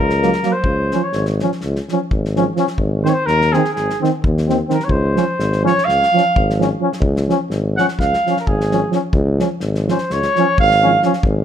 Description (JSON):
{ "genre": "balkan folk, Balkan brass band", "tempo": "254 BPM (eighths)", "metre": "9/8", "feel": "straight", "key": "Db major", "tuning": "A4 = 440 Hz", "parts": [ { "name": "warm trumpet", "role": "melody", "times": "0.0-11.0 s", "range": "Ab4 to Gb5", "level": "-17 LUFS", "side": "right 1 dB", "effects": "none" }, { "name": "mellow tuba", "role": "bass", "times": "0.0-11.4 s", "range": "Ab1 to Eb2", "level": "-19 LUFS", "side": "left 1 dB", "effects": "none" }, { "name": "loose indie drum kit", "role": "percussion", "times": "0.1-11.4 s", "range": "kick drum, snare drum", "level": "-23 LUFS", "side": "left 1 dB", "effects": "none" }, { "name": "clear trombone", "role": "accompaniment", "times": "0.2-11.1 s", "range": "Bb3 to Db4", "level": "-23 LUFS", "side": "left 7 dB", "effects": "none" }, { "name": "dark euphonium", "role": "accompaniment", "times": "0.2-11.1 s", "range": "Eb3 to Gb3", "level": "-22 LUFS", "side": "right 7 dB", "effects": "none" } ], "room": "moderate recital hall reverb, RT60 1.5 s", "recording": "close, detailed microphones", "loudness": "-14 LUFS", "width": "side -9 dB against mid", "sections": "0.0-11.4 A section", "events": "trumpet solo 0.0-11.4", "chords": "0.0 Gb; 0.6 Db; 2.8 Ab; 4.9 Db", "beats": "0.16 0.40 | 0.64 0.87 1.11 1.35 1.58 1.82 2.06 2.29 2.53 | 2.77 3.00 3.24 3.48 3.71 3.95 4.19 4.42 4.66 | 4.89 5.13 5.37 5.60 5.84 6.07 6.31 6.54 6.78 | 7.01 7.25 7.49 7.72 7.96 8.19 8.43 8.66 8.90 | 9.13 9.37 9.60 9.84 10.07 10.31 10.54 10.78 11.01 | 11.25" }